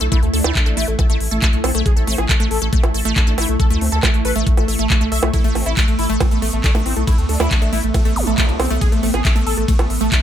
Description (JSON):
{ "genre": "psychedelic trance", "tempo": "138 BPM", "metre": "4/4", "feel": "straight", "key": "A minor", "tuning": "A4 = 440 Hz", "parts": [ { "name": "wide unison lead", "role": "melody", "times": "0.0-10.2 s", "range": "A3 to E5", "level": "-24 LUFS", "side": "equal", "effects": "phaser, sidechain pumping, dub echo" }, { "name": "formant-sweep wobble bass", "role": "second line", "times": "0.0-10.2 s", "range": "A3 to E4", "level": "-35 LUFS", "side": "left 2 dB", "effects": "none" }, { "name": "evolving wavetable pad", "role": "sustained chords", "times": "0.0-10.2 s", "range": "A3 to E4", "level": "-26 LUFS", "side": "right 2 dB", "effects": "ensemble chorus, built-in reverb, sidechain pumping" }, { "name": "wide unison pluck", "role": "riff", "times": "0.0-10.0 s", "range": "A3 to A4", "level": "-25 LUFS", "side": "moving between left 4 dB and right 6 dB", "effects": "auto-pan, sidechain pumping, tape echo" }, { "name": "round analog bass", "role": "bass", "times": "0.0-10.1 s", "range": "A1 to D2", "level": "-20 LUFS", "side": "equal", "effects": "none" }, { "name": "drum and bass drum kit", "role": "drums", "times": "0.0-10.2 s", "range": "bongos, handclaps, hi-hat, ride cymbal", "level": "-22 LUFS", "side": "right 1 dB", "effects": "none" }, { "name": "electronic kick drum", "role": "drums", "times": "0.1-10.2 s", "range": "none", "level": "-16 LUFS", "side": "equal", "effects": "none" }, { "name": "zap", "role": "sound effects", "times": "8.2-8.3 s", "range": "none", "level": "-28 LUFS", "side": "equal", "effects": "none" } ], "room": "little or no reverb", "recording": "none", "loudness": "-14 LUFS", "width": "side -10 dB against mid", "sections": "0.0-10.2 A section", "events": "none", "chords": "0.0 A5", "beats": "| 0.12 0.55 0.99 1.42 | 1.86 2.29 2.73 3.16 | 3.60 4.03 4.47 4.90 | 5.33 5.77 6.21 6.64 | 7.08 7.51 7.94 8.38 | 8.81 9.25 9.68 10.12" }